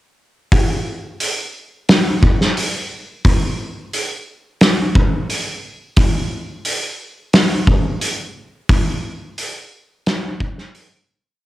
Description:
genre	rock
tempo	88 BPM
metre	4/4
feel	straight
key	none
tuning	none
part	loose indie drum kit	drums	0.5-10.9 s	hi-hat, kick drum, snare drum	-15 LUFS	equal	cassette tape
room	light reverb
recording	home recording on cassette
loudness	-16 LUFS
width	side -16 dB against mid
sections	0.5-11.4 verse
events	fade-out 8.7-11.4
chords	none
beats	| 0.52 1.20 1.89 2.57 | 3.25 3.93 4.61 5.29 | 5.97 6.65 7.33 8.02 | 8.70 9.38 10.07 10.75

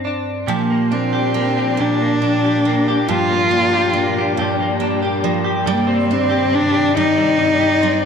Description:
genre	six-eight pop ballad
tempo	46 BPM (dotted quarters)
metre	6/8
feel	straight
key	unclear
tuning	A4 = 440 Hz
part	direct-recorded clean electric guitar	accompaniment	0.0-8.1 s	G2 to G4	-21 LUFS	equal	double-tracked left and right
part	dark cello	melody	0.5-8.1 s	Bb3 to F4	-17 LUFS	equal	none
part	warm studio string section	sustained chords	0.5-8.1 s	G2 to D5	-23 LUFS	left 9 dB	none
part	picked steel-string acoustic guitar	arpeggios	0.5-8.1 s	F3 to G4	-24 LUFS	right 10 dB	slapback echo
room	moderate echo chamber reverb, RT60 2.7 s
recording	1960s-style stereo with parts hard left and right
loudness	-14 LUFS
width	side -6 dB against mid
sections	0.5-8.1 A section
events	none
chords	0.5 Bb6; 3.1 Gm7; 5.7 Cmadd9/G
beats	| 0.48 1.78 | 3.07 4.37 | 5.67 6.97

